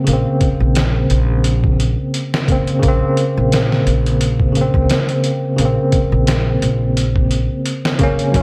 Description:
trip hop; 87 BPM; 4/4; swing 55% on 16ths; Bb minor; A4 = 439 Hz
bell-like tine electric piano; accompaniment; 0.0-8.4 s; Db3 to Db4; -19 LUFS; equal; tremolo, low-pass filter, tape echo
upright bass; bass; 0.1-8.4 s; Bb1 to Eb2; -19 LUFS; equal
trip hop sampler-style drum kit; drums; 0.1-8.4 s; hi-hat, kick drum, snare drum; -22 LUFS; equal
darbuka; percussion; 8.4 s; -36 LUFS; equal
moderate lush hall reverb, RT60 2.1 s; dreamy mix soaked in reverb; -16 LUFS; mono
0.0-8.4 A section
filter sweep on tine electric piano 0.0-8.4
0.0 Bbmadd9
| 0.07 0.76 1.45 2.14 | 2.83 3.52 4.21 4.90 | 5.59 6.28 6.97 7.66 | 8.35

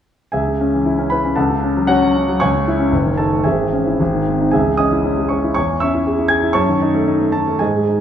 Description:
classical, virtuoso piano study; 108-122 BPM; 2/4; rubato; C# minor; A4 = 440 Hz
warm grand piano; solo; 0.3-8.0 s; F#1 to G#6; -14 LUFS; equal
wet stone room reverb, RT60 1.4 s; -14 LUFS; side -9 dB against mid
0.3-8.0 A section
0.3 C#m; 1.4 F#m/C#; 2.4 C#m; 2.9 D#dim/F#; 3.5 C#m/G#; 4.0 G#; 4.5 C#m; 5.6 C#m/E; 6.6 D#m7b5/F#
| 0.34 0.85 | 1.37 1.89 | 2.42 2.93 | 3.45 3.99 | 4.53 5.05 | 5.57 6.06 | 6.56 7.07 | 7.61

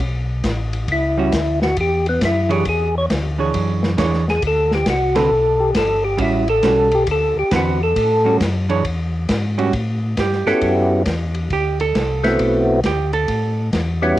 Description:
soul jazz organ trio; 136 BPM; 4/4; swing 66% on 8ths; A mixolydian; A4 = 442 Hz
mellow tonewheel organ; bass; 0.0-14.2 s; G1 to A2; -21 LUFS; left 1 dB; chorus vibrato, slow rotary speaker
open jazz drum kit; drums; 0.0-14.2 s; hi-hat, kick drum, ride cymbal, snare drum; -24 LUFS; left 1 dB; cassette tape
percussive tonewheel organ; melody; 0.9-14.2 s; G3 to C#5; -17 LUFS; equal; slow rotary speaker, overdrive, chorus vibrato, cassette tape
hollow-body jazz guitar; accompaniment; 1.2-13.7 s; D3 to C#5; -21 LUFS; right 5 dB; cassette tape
small room ambience; home recording on cassette; -16 LUFS; side -14 dB against mid
0.0-9.7 A section; 9.7-14.2 A section
tonewheel organ solo 0.0-9.7; hollow-body jazz guitar solo 9.7-14.2
0.0 A13; 2.7 E13; 4.4 D6; 6.2 A13; 7.1 D13; 8.0 A6; 8.8 E69; 9.7 A13; 11.5 D13; 13.3 A13
0.00 0.44 | 0.88 1.32 1.77 2.21 | 2.65 3.09 3.53 3.98 | 4.42 4.86 5.30 5.74 | 6.19 6.63 7.07 7.51 | 7.96 8.40 8.84 9.28 | 9.73 10.17 10.61 11.06 | 11.50 11.95 12.39 12.83 | 13.28 13.72 14.16

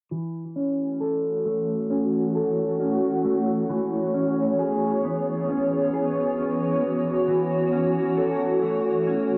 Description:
dream pop; 67 BPM; 4/4; straight; F# minor; A4 = 442 Hz
granular cloud pad; sustained chords; 1.3-9.4 s; E3 to C#5; -26 LUFS; equal; built-in reverb, low-pass filter, cassette tape
mellow electric guitar; arpeggios; 0.1-9.4 s; E3 to A4; -28 LUFS; equal; analog chorus, low-pass filter, cassette tape, tape echo
wet booth ambience, RT60 0.3 s; home recording on cassette; -24 LUFS; mono
0.1-9.4 A section
filter sweep 0.1-9.4
0.1 F#m7; 3.7 C#m7/E
| 0.11 1.01 1.90 2.80 | 3.69 4.59 5.49 6.38 | 7.28 8.17 9.07

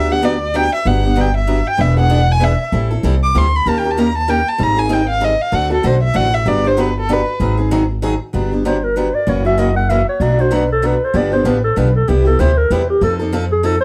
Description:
acoustic string swing (jazz manouche); 192 BPM; 3/4; swing 58% on 8ths; G major; A4 = 445 Hz
warm violin; melody; 0.0-7.4 s; A4 to D6; -20 LUFS; equal
picked steel-string acoustic guitar; accompaniment; 0.0-13.7 s; B2 to Bb4; -21 LUFS; equal
upright bass; bass; 0.0-13.8 s; E1 to F2; -19 LUFS; equal
mellow clarinet; second line; 8.7-13.8 s; G4 to F#5; -19 LUFS; equal; analog delay
moderate studio reverb, RT60 0.6 s; -15 LUFS; mono
0.9-8.3 A section; 8.3-13.8 A section
violin solo 0.0-8.3; clarinet solo 8.3-13.8
0.0 Gmaj7; 1.8 E7; 2.7 Am7; 3.7 Eb7; 4.6 Abmaj7; 5.5 D7; 6.5 Gmaj7; 7.4 Ab7; 8.3 Gmaj7; 9.3 F#7; 10.2 Bm7; 11.2 G7; 12.1 Cmaj9; 13.0 F7
0.23 0.55 | 0.86 1.17 1.48 | 1.79 2.11 2.42 | 2.73 3.04 3.35 | 3.67 3.98 4.29 | 4.60 4.91 5.22 | 5.54 5.85 6.16 | 6.47 6.78 7.09 | 7.41 7.72 8.03 | 8.34 8.65 8.96 | 9.28 9.59 9.90 | 10.21 10.53 10.84 | 11.15 11.46 11.77 | 12.09 12.40 12.71 | 13.02 13.33 13.64

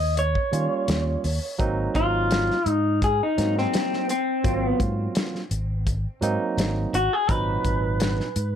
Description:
straight-eighth soul blues; 84 BPM; 4/4; straight; Ab mixolydian; A4 = 440 Hz
electric guitar through a small old amp; melody; 0.0-8.6 s; C4 to Eb5; -24 LUFS; left 1 dB
fingered electric bass; bass; 0.0-8.6 s; Ab1 to Eb3; -26 LUFS; equal
warm soul drum kit; drums; 0.2-8.5 s; hi-hat, kick drum, snare drum; -27 LUFS; left 1 dB
barky tine electric piano; accompaniment; 0.5-8.3 s; Bb2 to F4; -28 LUFS; right 4 dB
light reverb; -21 LUFS; side -9 dB against mid
0.0-1.6 A section; 1.6-8.6 B section
clean electric guitar solo 1.6-8.6
0.0 Eb9; 1.6 Ab9
0.17 0.88 | 1.59 2.31 3.02 3.73 | 4.44 5.16 5.87 6.58 | 7.29 8.01

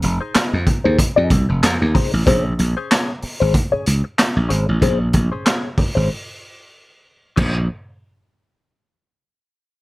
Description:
funk; 94 BPM; 4/4; swing 56% on 16ths; Bb minor; A4 = 441 Hz
direct-recorded clean electric guitar; accompaniment; 0.0-7.6 s; Db4 to Eb5; -21 LUFS; left 4 dB; wah, wide subtle chorus
slap bass; bass; 0.0-7.7 s; F1 to F2; -18 LUFS; equal
raw garage drum kit; drums; 0.0-7.5 s; crash cymbal, handclaps, hi-hat, kick drum, snare drum; -18 LUFS; equal
little or no reverb; -16 LUFS; side -19 dB against mid
0.0-2.3 A section; 2.3-7.4 B section; 7.4-9.8 C section
break 6.1-7.4
0.0 Fm7; 2.3 Bbm9
0.35 0.99 1.63 | 2.27 2.90 3.54 4.18 | 4.82 5.46 6.10 6.74 | 7.38

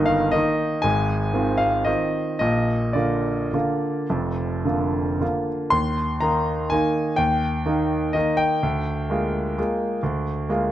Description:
classical, piano waltz; 102-134 BPM; 3/4; rubato; Eb major; A4 = 438 Hz
bright concert grand piano; solo; 0.0-10.7 s; F1 to C6; -20 LUFS; equal
light reverb; close, detailed microphones; -20 LUFS; side -12 dB against mid
0.0-5.7 A section; 5.7-10.7 B section
0.0 Eb/G; 0.8 Fm7/Ab; 2.4 Bb; 5.7 Eb; 8.6 Bb7/D
0.33 | 0.85 1.34 1.87 | 2.42 2.96 3.54 | 4.10 4.65 5.21 | 5.74 6.23 6.72 | 7.19 7.66 8.15 | 8.63 9.10 9.57 | 10.04 10.50

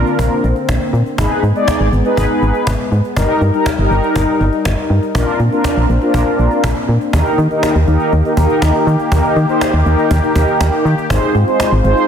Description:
synth-pop; 121 BPM; 4/4; straight; Eb major; A4 = 440 Hz
mellow synth brass; accompaniment; 0.0-12.1 s; D4 to D5; -16 LUFS; equal; chorus
sweeping resonant pad; sustained chords; 0.0-12.1 s; D3 to Bb4; -19 LUFS; left 2 dB; wide subtle chorus
solid FM bass; bass; 0.0-11.9 s; G1 to Eb3; -14 LUFS; equal
cajon; drums; 0.1-12.0 s; -22 LUFS; equal
light reverb, digital ambience; dense, heavily limited modern master; -12 LUFS; side -8 dB against mid
0.0-7.1 A section; 7.1-12.1 B section
0.0 Bbadd9; 1.2 Abm; 3.2 Eb/G; 5.2 Bbadd9; 7.1 Eb; 11.1 Ab6
0.19 0.69 | 1.18 1.68 2.17 2.67 | 3.17 3.66 4.16 4.65 | 5.15 5.65 6.14 6.64 | 7.13 7.63 8.12 8.62 | 9.12 9.61 10.11 10.61 | 11.10 11.60

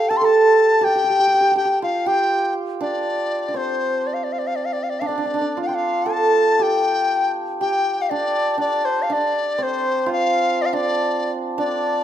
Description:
chinese traditional, Chinese chamber ensemble; 60 BPM; 2/4; straight; D yu mode; A4 = 440 Hz
bright reedy large dizi; melody; 0.0-12.0 s; C5 to C6; -20 LUFS; left 3 dB
hammered dulcimer; second line; 0.0-12.0 s; C4 to C5; -21 LUFS; right 3 dB
moderate recital hall reverb, RT60 1.8 s; minimal, uncompressed stereo recording; -17 LUFS; side -10 dB against mid
0.0-6.1 A section; 6.1-12.0 B section
| 0.06 1.06 | 2.05 3.05 | 4.05 5.06 | 6.08 7.09 | 8.09 9.08 | 10.07 11.08

